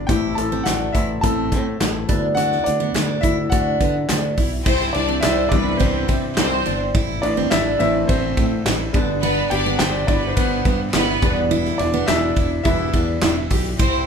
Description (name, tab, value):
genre	piano-driven pop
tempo	105 BPM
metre	4/4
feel	straight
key	unclear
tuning	A4 = 440 Hz
part	clear concert grand piano	accompaniment	0.0-13.8 s	D3 to B5	-23 LUFS	left 2 dB	none
part	fingered electric bass	bass	0.0-14.0 s	E1 to D3	-25 LUFS	left 1 dB	none
part	picked steel-string acoustic guitar	riff	0.1-14.1 s	B3 to G4	-23 LUFS	right 3 dB	none
part	natural country drum kit	drums	0.1-13.9 s	crash cymbal, handclaps, hi-hat, kick drum, ride cymbal, snare drum	-22 LUFS	equal	none
part	bright studio violin section	second line	4.7-14.0 s	B3 to D5	-24 LUFS	left 1 dB	none
room	moderate large studio reverb, RT60 0.9 s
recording	band playing live in one room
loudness	-17 LUFS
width	side -6 dB against mid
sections	0.0-4.7 A section; 4.7-14.1 B section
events	grand piano solo 0.0-4.7, 4.7-14.1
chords	0.1 Am; 2.1 D6; 4.7 C; 6.9 Am; 8.9 G; 11.2 Em